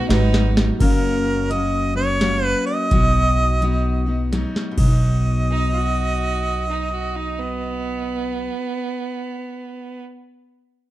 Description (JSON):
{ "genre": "honky-tonk and classic country", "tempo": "85 BPM", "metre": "3/4", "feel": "swing 64% on 8ths", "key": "B major", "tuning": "A4 = 445 Hz", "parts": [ { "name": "warm harmonica", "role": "melody", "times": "0.0-8.5 s", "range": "A#4 to D#5", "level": "-23 LUFS", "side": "right 2 dB", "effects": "none" }, { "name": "clear fiddle", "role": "second line", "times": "0.0-0.6, 5.5-10.0 s", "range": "B3 to F#4", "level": "-27 LUFS", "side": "right 5 dB", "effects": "none" }, { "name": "picked steel-string acoustic guitar", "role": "accompaniment", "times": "0.0-8.7 s", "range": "F#2 to F#4", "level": "-25 LUFS", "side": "left 3 dB", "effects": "none" }, { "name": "dark baby grand piano", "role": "accompaniment", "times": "0.1-0.6 s", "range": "D#4 to B4", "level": "-28 LUFS", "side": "right 5 dB", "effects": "none" }, { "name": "upright bass", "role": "bass", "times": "0.1-8.5 s", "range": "F#1 to B1", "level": "-21 LUFS", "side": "equal", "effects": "none" }, { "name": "booming analog drum machine", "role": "drums", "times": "0.1-4.9 s", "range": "crash cymbal, hi-hat, kick drum, ride cymbal, snare drum", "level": "-21 LUFS", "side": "equal", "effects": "none" } ], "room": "light reverb", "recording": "dark, warm production", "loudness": "-18 LUFS", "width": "side -15 dB against mid", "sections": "0.8-5.0 A section; 5.0-9.3 B section", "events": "drum fill 0.0-0.8, 4.3-5.0", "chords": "0.0 B; 0.8 F#; 2.9 B" }